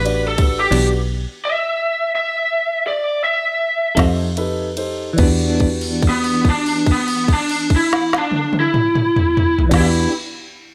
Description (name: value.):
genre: slow blues.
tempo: 48-60 BPM (dotted quarters).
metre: 12/8.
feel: straight.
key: E minor.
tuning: A4 = 441 Hz.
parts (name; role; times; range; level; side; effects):
lead guitar through a small cranked amp; melody; 0.0-10.1 s; B3 to E5; -20 LUFS; equal; overdrive, slapback echo.
warm concert grand piano; accompaniment; 0.0-10.1 s; D4 to D5; -28 LUFS; equal; none.
fingered electric bass; bass; 0.0-10.1 s; A1 to F2; -23 LUFS; equal; none.
organic electronic drum kit; drums; 0.1-9.9 s; crash cymbal, kick drum, ride cymbal, snare drum, toms; -22 LUFS; equal; none.
clean electric guitar; accompaniment; 0.7-10.1 s; E3 to A4; -26 LUFS; equal; tremolo.
room: light reverb, digital ambience.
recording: none.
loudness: -18 LUFS.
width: mono.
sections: 0.0-5.2 A section; 5.2-10.2 B section.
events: slowing down 0.0-5.2; kick and snare drop out 0.7-5.2; held note 5.2-9.7.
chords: 0.0 Em7; 4.0 F7; 5.2 Em7.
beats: | 0.72 1.76 2.84 3.97 | 5.18 6.44 7.70 8.95.